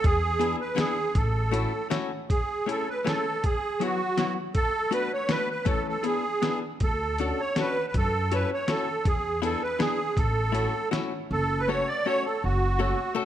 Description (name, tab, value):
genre	musette waltz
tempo	161 BPM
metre	3/4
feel	rubato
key	A major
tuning	A4 = 441 Hz
part	musette accordion	melody	0.0-13.1 s	F#4 to D5	-27 LUFS	right 2 dB	none
part	upright bass	bass	0.0-1.6, 6.8-12.9 s	F#1 to F#2	-28 LUFS	equal	none
part	lo-fi sampler-style drum kit	drums	0.0-11.0 s	hi-hat, kick drum, snare drum	-29 LUFS	equal	overdrive
part	archtop guitar, miked and amplified	accompaniment	0.4-13.2 s	E3 to A4	-31 LUFS	left 6 dB	none
room	light reverb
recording	none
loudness	-24 LUFS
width	side -11 dB against mid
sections	0.0-2.3 A section; 2.3-11.3 A section; 11.3-13.2 B section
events	none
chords	0.0 E7; 1.2 A6; 2.3 Amaj7; 3.4 Esus2; 4.5 Bm7; 5.7 A/E; 6.0 E7; 6.8 Dmaj7; 7.9 F#m7; 9.1 E7; 10.2 A6; 11.3 F#m